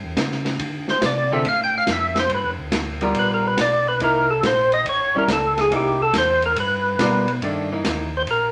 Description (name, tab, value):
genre	soul jazz organ trio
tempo	141 BPM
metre	4/4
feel	swing 67% on 8ths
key	unclear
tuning	A4 = 440 Hz
part	mellow tonewheel organ	bass	0.0-8.5 s	A1 to D3	-31 LUFS	equal	chorus vibrato, slow rotary speaker
part	vintage drum kit	drums	0.2-8.4 s	hi-hat, kick drum, ride cymbal, snare drum	-28 LUFS	equal	none
part	percussive tonewheel organ	melody	0.9-8.5 s	G4 to G5	-21 LUFS	equal	slow rotary speaker, overdrive
part	archtop guitar, miked and amplified	accompaniment	1.3-8.1 s	D3 to A#4	-26 LUFS	equal	none
room	wet studio reverb, RT60 0.6 s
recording	none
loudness	-20 LUFS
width	mono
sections	0.0-7.4 A section; 7.4-8.5 B section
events	tonewheel organ solo 0.0-7.4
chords	0.0 A (rootless); 0.6 Dm7; 2.3 G7#9; 4.0 C7#9; 4.9 A7; 5.7 C7#9; 6.6 G7#9; 7.4 Gm69